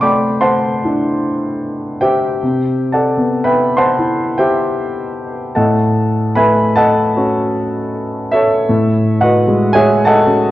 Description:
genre	classical, impressionist solo piano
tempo	77 BPM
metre	4/4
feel	rubato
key	C lydian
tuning	A4 = 440 Hz
part	warm grand piano	solo	0.0-10.5 s	A2 to D6	-12 LUFS	equal	none
room	moderate recital hall reverb, RT60 1.5 s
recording	worn, warbling old tape, cassette tape, warbly pitch drift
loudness	-12 LUFS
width	side -15 dB against mid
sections	0.0-10.5 A section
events	none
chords	0.0 C69; 5.6 A69

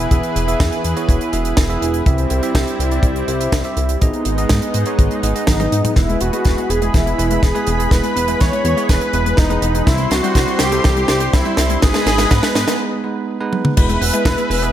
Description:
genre	italo disco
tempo	123 BPM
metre	4/4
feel	straight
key	E major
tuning	A4 = 440 Hz
part	lush unison pad	sustained chords	0.0-14.7 s	E3 to C6	-23 LUFS	equal	chorus
part	bell-like tine electric piano	stabs	0.0-14.7 s	E3 to E5	-23 LUFS	right 3 dB	ping-pong delay
part	chorused synth bass	bass	0.0-14.7 s	E1 to G#2	-21 LUFS	equal	none
part	kick drum	drums	0.1-14.4 s	none	-15 LUFS	equal	none
part	tight funk drum kit	drums	0.1-14.7 s	crash cymbal, hi-hat, snare drum, toms	-22 LUFS	right 1 dB	none
part	wide unison lead	melody	5.5-14.7 s	D#4 to C#5	-20 LUFS	equal	ping-pong delay
part	analog pluck	arpeggios	6.0-14.7 s	D#3 to C4	-27 LUFS	left 4 dB	chorus, ping-pong delay
room	light reverb, studio reverb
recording	none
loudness	-14 LUFS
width	side -11 dB against mid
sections	0.0-6.0 A section; 6.0-13.8 B section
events	drum fill 5.5-6.0, 6.0-12.8, 13.5; break 12.8-13.8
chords	0.0 E; 2.1 C; 4.0 G#m; 6.0 E; 9.9 C; 11.8 G#m; 13.8 E

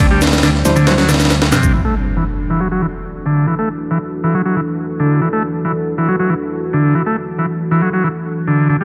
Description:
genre	breakbeat, breaks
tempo	138 BPM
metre	4/4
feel	straight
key	E minor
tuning	A4 = 440 Hz
part	deep dark ambient pad	sustained chords	0.0-8.8 s	E3 to A4	-24 LUFS	equal	chorus, built-in reverb, vintage 12-bit sampler grit, sidechain pumping
part	combo organ	riff	0.0-8.8 s	C3 to A3	-18 LUFS	equal	vintage 12-bit sampler grit, low-pass filter
part	picked electric bass	bass	0.0-1.7 s	D2 to G2	-18 LUFS	equal	none
part	breakbeat sampler-style drum kit	drums	0.0-1.7 s	kick drum, ride cymbal, snare drum	-16 LUFS	equal	studio reverb
part	shaker	drums	0.0-1.7 s	none	-30 LUFS	equal	overdrive, studio reverb
part	congas and bongos	percussion	0.3-1.6 s	none	-28 LUFS	equal	none
part	tine electric piano	stabs	0.7-1.0 s	G3 to C5	-24 LUFS	equal	dub echo
part	impact	sound effects	1.7-3.5 s	none	-25 LUFS	equal	none
room	light reverb, digital ambience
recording	none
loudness	-16 LUFS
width	mono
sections	0.0-1.7 A section; 1.7-8.8 B section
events	impact 1.7-3.5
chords	0.0 D9sus4; 1.7 E9sus4

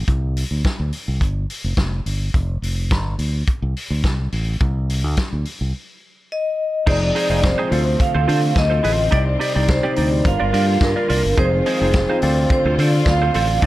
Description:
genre	disco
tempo	106 BPM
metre	4/4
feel	straight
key	unclear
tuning	A4 = 442 Hz
part	fingered electric bass	bass	0.0-13.7 s	F1 to D3	-20 LUFS	equal	none
part	vintage drum kit	drums	0.1-13.7 s	crash cymbal, hi-hat, kick drum, snare drum	-22 LUFS	equal	none
part	vibraphone with medium hard mallets	melody	6.3-13.6 s	Bb4 to F5	-21 LUFS	right 1 dB	analog delay
part	mellow tine electric piano	accompaniment	6.9-13.7 s	C3 to D5	-23 LUFS	left 2 dB	phaser
part	semi-hollow electric guitar	accompaniment	6.9-13.7 s	Eb4 to D5	-26 LUFS	right 4 dB	analog chorus
part	rich studio string section	sustained chords	6.9-13.7 s	C3 to F4	-28 LUFS	equal	none
room	little or no reverb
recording	none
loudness	-16 LUFS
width	side -16 dB against mid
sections	0.0-6.9 A section; 6.9-13.7 B section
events	break 5.7-6.9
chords	0.1 Csus2; 1.2 Fsus2; 3.2 D5; 4.6 Csus2; 5.7 N.C.; 6.9 Fm7; 7.7 Dm7; 9.1 Cmadd9; 10.3 Gm7; 11.4 Fm7; 12.2 Dm7

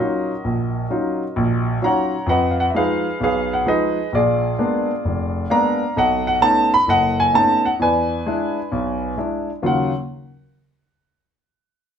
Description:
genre	solo jazz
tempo	131 BPM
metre	4/4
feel	swing 66% on 8ths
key	Eb minor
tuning	A4 = 442 Hz
part	clear grand piano	solo	0.0-9.9 s	F1 to B5	-17 LUFS	equal	none
room	wet club reverb, RT60 0.8 s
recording	heard from further back in the room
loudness	-17 LUFS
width	side -8 dB against mid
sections	0.0-2.3 A section; 2.3-9.6 B section; 9.6-11.5 C section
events	none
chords	0.0 Ebm9; 2.3 Fm7b5; 4.1 Bb7b9; 6.0 B9; 7.8 E7; 9.6 Ebm9

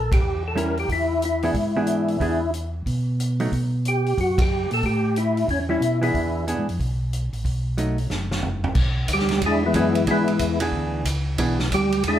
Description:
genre	soul jazz organ trio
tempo	183 BPM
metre	4/4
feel	swing 63% on 8ths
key	E mixolydian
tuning	A4 = 440 Hz
part	percussive tonewheel organ	melody	0.0-6.4, 9.1-12.2 s	E3 to A#4	-22 LUFS	left 1 dB	slow rotary speaker, chorus vibrato
part	mellow tonewheel organ	bass	0.0-12.2 s	F#1 to B2	-25 LUFS	equal	slow rotary speaker
part	vintage drum kit	drums	0.1-12.1 s	crash cymbal, hi-hat, kick drum, ride cymbal, snare drum, toms	-27 LUFS	equal	none
part	hollow-body jazz guitar	accompaniment	0.6-3.5, 5.7-11.6 s	E3 to G#4	-26 LUFS	right 2 dB	none
room	wet studio reverb, RT60 0.9 s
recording	heard from further back in the room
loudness	-20 LUFS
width	side -11 dB against mid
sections	0.0-8.8 A section; 8.8-12.2 B section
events	band accent 0.1, 4.3; drum fill 8.1-8.8; tonewheel organ solo 8.8-12.2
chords	0.0 A#dim7; 0.9 E7; 3.5 B5; 4.8 A7(no3); 6.1 E7; 7.4 B7; 8.8 E7

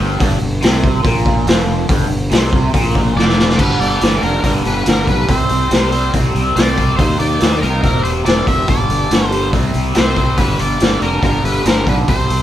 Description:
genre	blues rock power trio and southern rock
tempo	142 BPM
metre	4/4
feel	straight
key	unclear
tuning	A4 = 436 Hz
part	raw garage guitar	riff	0.0-12.4 s	F2 to Eb4	-19 LUFS	equal	overdrive, phaser
part	fuzz fingered electric bass	bass	0.0-12.4 s	E1 to Eb2	-18 LUFS	equal	overdrive
part	raw garage drum kit	drums	0.2-12.4 s	crash cymbal, hi-hat, kick drum, snare drum	-15 LUFS	equal	none
part	octave-fuzz lead guitar	melody	3.2-12.4 s	Bb4 to E5	-20 LUFS	equal	distortion
room	light reverb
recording	band playing live in one room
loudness	-12 LUFS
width	side -12 dB against mid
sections	0.0-3.6 A section; 3.6-12.4 B section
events	drum fill 3.2-3.6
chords	0.0 G5; 3.6 G; 5.3 C5; 7.0 Eb5; 7.8 C/E; 8.7 G5; 9.5 C5; 10.4 G

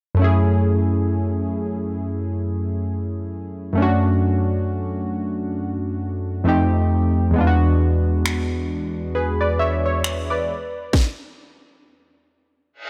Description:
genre	contemporary R&B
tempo	67 BPM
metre	4/4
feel	swing 58% on 16ths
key	F# minor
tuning	A4 = 440 Hz
part	warm analog keys	accompaniment	0.1-11.0 s	E2 to E5	-21 LUFS	equal	chorus
part	trap drum kit	drums	8.3-11.2 s	finger snaps, kick drum, snare drum	-25 LUFS	equal	overdrive
part	reverse cymbal	sound effects	12.8-12.9 s	none	-32 LUFS	equal	none
room	light reverb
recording	none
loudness	-21 LUFS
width	mono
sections	0.2-12.9 A section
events	stop 10.9-12.9; reverse cymbal 12.8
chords	0.2 F#m7; 3.8 Dmaj7/F#; 6.5 F9; 7.4 E7; 10.5 N.C.

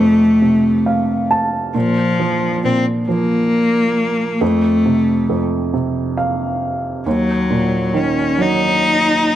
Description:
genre	pop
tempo	45 BPM (dotted quarters)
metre	6/8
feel	straight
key	unclear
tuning	A4 = 440 Hz
part	rich cello	melody	0.0-9.4 s	F3 to Eb4	-16 LUFS	left 1 dB	none
part	warm upright piano	accompaniment	0.0-9.4 s	Eb2 to A5	-18 LUFS	right 2 dB	none
room	wet spring reverb, RT60 2.3 s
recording	none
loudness	-14 LUFS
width	side -12 dB against mid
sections	0.0-9.4 A section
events	upright piano fill 0.4-1.8, 5.7-7.1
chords	0.0 F; 1.8 Bb5; 4.4 F; 7.1 Ebm

